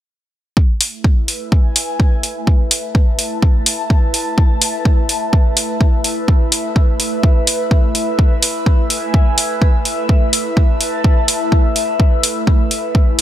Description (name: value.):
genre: piano house.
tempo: 126 BPM.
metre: 4/4.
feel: swing 57% on 16ths.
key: unclear.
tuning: A4 = 440 Hz.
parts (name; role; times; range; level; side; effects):
electronic kick drum; drums; 0.6-13.1 s; none; -12 LUFS; equal; overdrive.
airy breathy pad; texture; 1.0-13.2 s; A3 to A5; -20 LUFS; equal; chorus, phaser, sidechain pumping.
electronic hi-hat; drums; 0.8-13.2 s; none; -16 LUFS; equal; none.
room: light reverb.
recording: bright 1980s-style digital production.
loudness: -13 LUFS.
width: side -12 dB against mid.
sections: 0.6-13.2 A section.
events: none.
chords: 0.6 A5; 2.5 Asus2; 8.2 A5; 10.1 Asus2; 12.0 Eadd11/A.